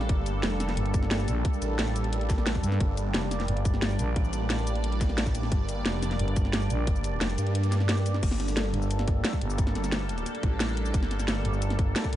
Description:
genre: dark technical drum and bass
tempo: 177 BPM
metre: 4/4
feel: straight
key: G minor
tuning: A4 = 441 Hz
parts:
  - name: sweeping resonant pad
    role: sustained chords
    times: 0.0-12.2 s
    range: G3 to D5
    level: -33 LUFS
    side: right 1 dB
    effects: chorus, sidechain pumping
  - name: phased detuned saw bass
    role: bass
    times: 0.0-11.4 s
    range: F1 to G2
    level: -29 LUFS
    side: equal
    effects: phaser
  - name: drum and bass drum kit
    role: drums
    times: 0.0-12.2 s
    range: cabasa, crash cymbal, hi-hat, snare drum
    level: -32 LUFS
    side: equal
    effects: overdrive
  - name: electronic kick drum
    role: drums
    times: 0.1-12.1 s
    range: none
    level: -27 LUFS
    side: equal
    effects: overdrive
  - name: growling FM bass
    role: bass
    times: 0.8-4.1, 6.2-12.2 s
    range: G1 to G2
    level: -28 LUFS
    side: equal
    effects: none
room: light reverb, digital ambience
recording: nothing above 10.5 kHz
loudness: -25 LUFS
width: side -13 dB against mid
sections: 0.0-8.2 A section; 8.2-12.2 A section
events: drop 0.0-8.2, 8.2-12.2; kick drops out 7.6-8.2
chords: 0.0 Gmadd9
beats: | 0.09 0.43 0.77 1.11 | 1.45 1.79 2.13 2.47 | 2.81 3.14 3.48 3.82 | 4.16 4.50 4.84 5.18 | 5.52 5.86 6.20 6.53 | 6.87 7.21 7.55 7.89 | 8.23 8.57 8.91 9.25 | 9.59 9.92 10.26 10.60 | 10.94 11.28 11.62 11.96

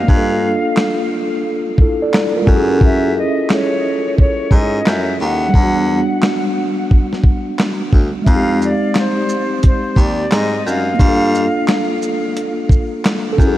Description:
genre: lo-fi hip hop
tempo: 88 BPM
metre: 4/4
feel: swing 65% on 16ths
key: unclear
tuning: A4 = 440 Hz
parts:
  - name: silver concert flute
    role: melody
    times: 0.0-12.0 s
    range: C5 to Gb5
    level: -22 LUFS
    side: left 1 dB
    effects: low-pass filter, diffuse ambient delay
  - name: mellow tine electric piano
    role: accompaniment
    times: 0.0-13.6 s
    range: G3 to D5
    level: -18 LUFS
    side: equal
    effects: medium stereo tremolo, cassette tape, low-pass filter
  - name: bright baritone saxophone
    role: bass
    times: 0.0-13.6 s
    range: D2 to Ab2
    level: -19 LUFS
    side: equal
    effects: none
  - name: dusty soul sampler-style drum kit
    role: drums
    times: 0.1-13.6 s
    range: handclaps, hi-hat, kick drum, shaker, snare drum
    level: -15 LUFS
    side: equal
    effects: none
room: moderate huge ambient reverb, RT60 4.6 s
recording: dreamy mix soaked in reverb, vinyl crackle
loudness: -13 LUFS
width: side -14 dB against mid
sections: 0.0-13.6 A section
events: break 0.0-8.3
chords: 0.1 Gm9; 2.5 Gbm9; 5.5 Em9; 8.3 Fm9; 11.0 Gm9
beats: | 0.09 0.77 1.45 2.13 | 2.82 3.50 4.18 4.86 | 5.54 6.23 6.91 7.59 | 8.27 8.95 9.63 10.32 | 11.00 11.68 12.36 13.04

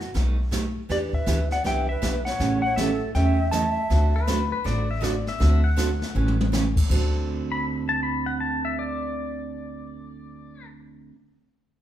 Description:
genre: country, western swing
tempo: 160 BPM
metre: 4/4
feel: swing 63% on 8ths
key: D mixolydian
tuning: A4 = 440 Hz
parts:
  - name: pedal steel guitar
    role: second line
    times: 0.0-0.1, 4.2-10.7 s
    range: F#4 to B5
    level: -29 LUFS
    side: left 4 dB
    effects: none
  - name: jazz brush drum kit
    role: drums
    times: 0.0-7.0 s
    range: brushed snare drum, crash cymbal, hi-hat, kick drum, snare drum, toms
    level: -28 LUFS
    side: left 1 dB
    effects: none
  - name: picked steel-string acoustic guitar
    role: accompaniment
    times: 0.1-11.1 s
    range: B2 to A4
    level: -28 LUFS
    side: right 4 dB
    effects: none
  - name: upright bass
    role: bass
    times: 0.1-11.1 s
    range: A1 to E2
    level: -24 LUFS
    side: equal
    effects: none
  - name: clean lap steel guitar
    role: melody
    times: 0.9-4.2 s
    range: D5 to A5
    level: -28 LUFS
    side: left 1 dB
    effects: none
  - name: breathy shakuhachi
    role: second line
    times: 0.9-4.2 s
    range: G4 to E5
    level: -31 LUFS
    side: right 3 dB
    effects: none
room: moderate large studio reverb, RT60 1.3 s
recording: band playing live in one room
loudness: -21 LUFS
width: side -11 dB against mid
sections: 0.0-6.9 A section; 6.9-9.9 B section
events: drum fill 6.2-6.5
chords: 0.1 Baug7; 0.9 Em7; 2.4 A7; 3.9 D7; 6.2 A7; 6.9 D7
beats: 0.15 0.53 | 0.90 1.28 1.65 2.03 | 2.40 2.78 3.15 3.53 | 3.90 4.28 4.65 5.03 | 5.41 5.78 6.16 6.53 | 6.91 7.28 7.66 8.03 | 8.41 8.78 9.16 9.53

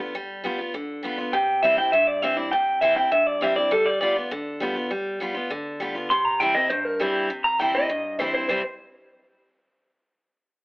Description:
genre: rock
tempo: 201 BPM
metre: 4/4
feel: straight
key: C major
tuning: A4 = 439 Hz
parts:
  - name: picked steel-string acoustic guitar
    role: accompaniment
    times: 0.0-8.6 s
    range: G2 to F4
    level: -27 LUFS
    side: equal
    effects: none
  - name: electric guitar through a small old amp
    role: melody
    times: 1.3-8.6 s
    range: G4 to C6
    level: -20 LUFS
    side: equal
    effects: plate reverb, analog delay
room: moderate studio reverb, RT60 0.5 s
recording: telephone sound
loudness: -21 LUFS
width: side -31 dB against mid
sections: 0.0-7.3 A section; 7.3-8.5 B section; 8.5-9.7 C section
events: none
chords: 0.0 G7; 1.3 C; 3.7 G7; 6.1 C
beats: | 0.15 0.44 0.74 1.04 | 1.34 1.63 1.93 2.23 | 2.53 2.82 3.12 3.42 | 3.72 4.01 4.31 4.61 | 4.91 5.21 5.50 5.80 | 6.10 6.40 6.70 7.00 | 7.29 7.59 7.89 8.19 | 8.49

